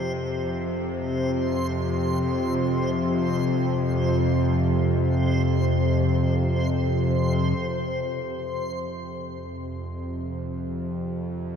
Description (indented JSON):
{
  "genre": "dark ambient drone",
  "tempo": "free time",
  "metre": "none",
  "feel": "none",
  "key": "unclear",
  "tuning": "A4 = 440 Hz",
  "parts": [
    { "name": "bowed-like drone", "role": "drone", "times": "0.0-11.6 s", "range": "F2 to C3", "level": "-23 LUFS", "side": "equal", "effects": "built-in reverb" },
    { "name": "backwards swelling texture", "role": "texture", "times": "0.0-7.6 s", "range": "C5", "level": "-32 LUFS", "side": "equal", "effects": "built-in reverb" }
  ],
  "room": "wet huge ambient reverb, RT60 8.2 s",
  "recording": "dreamy mix soaked in reverb",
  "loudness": "-22 LUFS",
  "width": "side -7 dB against mid",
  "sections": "0.0-7.6 A section; 7.6-11.6 B section",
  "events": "fade-in on synth drone 0.0-7.6, 7.6-11.6",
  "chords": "0.0 F5"
}